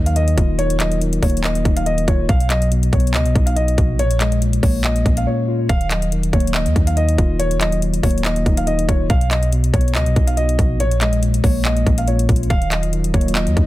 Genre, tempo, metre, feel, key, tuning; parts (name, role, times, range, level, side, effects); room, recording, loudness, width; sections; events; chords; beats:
hip hop, trap; 141 BPM; 4/4; half-time; Eb minor; A4 = 440 Hz
dark concert grand piano; melody; 0.0-13.7 s; Db5 to F5; -24 LUFS; equal; ping-pong delay
mellow tine electric piano; accompaniment; 0.0-13.7 s; Bb2 to F#4; -22 LUFS; left 2 dB; wide subtle chorus
warm 808-style bass; bass; 0.0-13.7 s; Eb1 to Eb2; -19 LUFS; equal
trap drum kit; drums; 0.1-13.7 s; handclaps, hi-hat, kick drum; -19 LUFS; equal
hollow soft pad; sustained chords; 12.7-13.7 s; Gb3 to Eb5; -28 LUFS; right 1 dB; chorus
small room ambience; dense, heavily limited modern master; -15 LUFS; side -16 dB against mid
0.0-13.7 A section
break 5.3-5.7
0.0 Ebmadd9; 2.3 B; 4.0 Bbm7; 5.7 Ebmadd9; 9.1 B; 10.8 Bbm7; 12.5 Ebmadd9
0.16 | 0.59 1.01 1.44 1.86 | 2.29 2.72 3.14 3.57 | 3.99 4.42 4.84 5.27 | 5.69 6.12 6.54 6.97 | 7.40 7.82 8.25 8.67 | 9.10 9.52 9.95 10.38 | 10.80 11.23 11.65 12.08 | 12.50 12.93 13.35